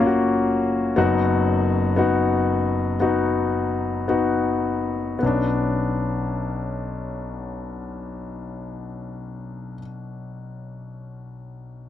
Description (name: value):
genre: pop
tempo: 52-63 BPM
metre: 4/4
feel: straight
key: B harmonic minor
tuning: A4 = 441 Hz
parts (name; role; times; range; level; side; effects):
- clear concert grand piano; accompaniment; 0.0-11.9 s; F#1 to F#4; -21 LUFS; left 2 dB; none
room: little or no reverb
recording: dry, close 1970s-style studio recording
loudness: -20 LUFS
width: side -10 dB against mid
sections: 0.0-5.2 A section; 5.2-9.8 B section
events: slowing down 0.0-5.2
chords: 0.0 F#; 1.0 B/F#; 5.2 Bmadd9